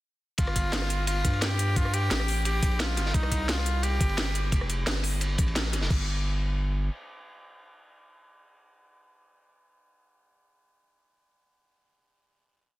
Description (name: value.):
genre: liquid drum and bass.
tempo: 174 BPM.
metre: 4/4.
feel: straight.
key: G minor.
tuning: A4 = 442 Hz.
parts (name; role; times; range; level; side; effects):
bright tenor saxophone; melody; 0.4-4.9 s; Eb4 to G4; -32 LUFS; equal; tape echo.
saturated sub bass; bass; 0.4-6.9 s; F1 to G2; -28 LUFS; equal; none.
crunchy breakbeat drum kit; drums; 0.4-5.9 s; ride cymbal, snare drum; -36 LUFS; equal; high-pass filter on cymbals, high-pass filter on snare, high-pass filter on room.
drum and bass drum kit; drums; 0.4-6.0 s; crash cymbal, hi-hat, rim click, snare drum; -32 LUFS; equal; none.
electronic kick drum; drums; 0.4-6.0 s; none; -26 LUFS; equal; none.
room: light reverb, studio reverb.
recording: dense, heavily limited modern master.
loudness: -24 LUFS.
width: side -17 dB against mid.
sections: 0.4-5.9 drop; 5.9-8.7 final chord.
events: drop 0.4-5.9.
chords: 0.4 Gm7; 3.1 Cm; 4.5 F; 5.9 N.C..